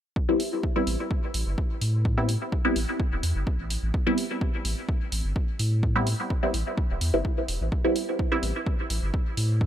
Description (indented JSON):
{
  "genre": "dub techno",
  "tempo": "127 BPM",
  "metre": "4/4",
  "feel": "straight",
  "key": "A minor",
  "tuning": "A4 = 440 Hz",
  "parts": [
    { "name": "electronic kick drum", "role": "drums", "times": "0.2-9.7 s", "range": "none", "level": "-27 LUFS", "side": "equal", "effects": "none" },
    { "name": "filtered dub chord stab", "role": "stabs", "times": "0.3-8.5 s", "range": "G3 to E4", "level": "-28 LUFS", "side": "equal", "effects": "phaser, sidechain pumping, dub echo" },
    { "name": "electronic hi-hat", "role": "drums", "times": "0.4-9.5 s", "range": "none", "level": "-34 LUFS", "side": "right 1 dB", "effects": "overdrive" },
    { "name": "warm sub bass", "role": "bass", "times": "0.9-9.7 s", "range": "E1 to A2", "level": "-26 LUFS", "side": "equal", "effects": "sidechain pumping" }
  ],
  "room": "digital ambience",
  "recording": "none",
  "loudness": "-24 LUFS",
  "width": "side -10 dB against mid",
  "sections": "0.2-9.7 A section",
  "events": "none",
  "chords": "0.2 Am9",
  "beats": "| 0.16 0.63 1.11 1.58 | 2.05 2.52 3.00 3.47 | 3.94 4.41 4.89 5.36 | 5.83 6.30 6.78 7.25 | 7.72 8.19 8.67 9.14 | 9.61"
}